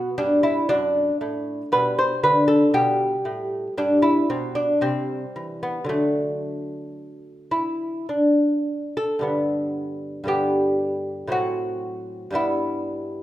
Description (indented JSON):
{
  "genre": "classical, baroque-style dance for lute",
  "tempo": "50-60 BPM",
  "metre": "3/4",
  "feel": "rubato",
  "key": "G major",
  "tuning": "A4 = 440 Hz",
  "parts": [
    { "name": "lute", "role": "solo", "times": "0.0-13.2 s", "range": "F#2 to C5", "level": "-20 LUFS", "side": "equal", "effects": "none" }
  ],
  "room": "moderate recital hall reverb, RT60 1.6 s",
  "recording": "minimal, uncompressed stereo recording",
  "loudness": "-20 LUFS",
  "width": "side -14 dB against mid",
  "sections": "0.0-9.2 A section; 9.2-13.2 B section",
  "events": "none",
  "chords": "0.0 Bm; 1.7 G/B; 2.7 G; 4.8 C; 5.9 D; 9.2 G; 11.3 F#dim/A; 12.4 G"
}